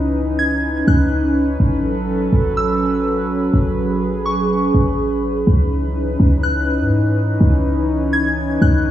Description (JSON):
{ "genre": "hip hop", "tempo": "124 BPM", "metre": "4/4", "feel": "half-time", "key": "C# minor", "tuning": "A4 = 442 Hz", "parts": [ { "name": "warbly tape-like pad", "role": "sustained chords", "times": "0.0-8.9 s", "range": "E3 to B4", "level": "-18 LUFS", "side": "equal", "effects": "chorus, built-in reverb" }, { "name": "clean 808-style bass", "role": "bass", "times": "0.0-8.9 s", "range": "A1 to G#2", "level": "-18 LUFS", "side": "equal", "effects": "none" }, { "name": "soft synth bell", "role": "melody", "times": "0.4-8.8 s", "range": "C#6 to G#6", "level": "-23 LUFS", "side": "equal", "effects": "chorus, low-pass filter, digital delay" } ], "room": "wet scoring stage reverb, RT60 1.6 s", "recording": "small room reverb", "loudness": "-15 LUFS", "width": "side -12 dB against mid", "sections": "0.0-8.9 A section", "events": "none", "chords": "0.0 C#m9; 1.6 A69; 5.5 C#m9" }